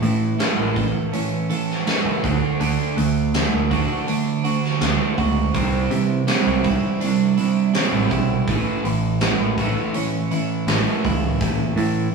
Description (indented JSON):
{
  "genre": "quiet-loud alternative rock",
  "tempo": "82 BPM",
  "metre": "4/4",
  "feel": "straight",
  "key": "unclear",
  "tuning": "A4 = 441 Hz",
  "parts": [
    { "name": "twelve-string electric guitar", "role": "arpeggios", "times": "0.0-12.1 s", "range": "A2 to A4", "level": "-27 LUFS", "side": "right 6 dB", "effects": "none" },
    { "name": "fuzz guitar", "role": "riff", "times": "0.0-12.1 s", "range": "A2 to D4", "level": "-22 LUFS", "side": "right 3 dB", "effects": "distortion" },
    { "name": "growling picked electric bass", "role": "bass", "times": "0.0-12.1 s", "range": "F#1 to C3", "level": "-23 LUFS", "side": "right 2 dB", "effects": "overdrive" },
    { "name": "huge arena drum kit", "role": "drums", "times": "0.0-11.9 s", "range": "hi-hat, kick drum, snare drum", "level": "-24 LUFS", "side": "right 1 dB", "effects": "none" }
  ],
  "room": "moderate studio reverb, RT60 0.6 s",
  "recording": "rough rehearsal-room recording, studio ambience",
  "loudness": "-18 LUFS",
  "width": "side -4 dB against mid",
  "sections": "0.0-12.1 A section",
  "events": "none",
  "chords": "0.0 A; 2.2 D; 5.5 Cadd9; 8.5 A"
}